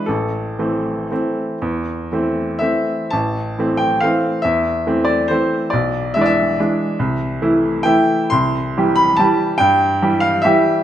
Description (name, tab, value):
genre	classical, piano waltz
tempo	108-149 BPM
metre	3/4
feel	rubato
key	A minor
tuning	A4 = 440 Hz
part	bright upright piano	solo	0.0-10.8 s	A1 to C6	-15 LUFS	equal	none
room	wet recital hall reverb, RT60 1.6 s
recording	none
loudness	-15 LUFS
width	side -11 dB against mid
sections	0.0-3.1 A section; 3.1-10.8 B section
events	none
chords	0.1 Am; 5.7 E7/B; 7.0 Am/C; 8.3 C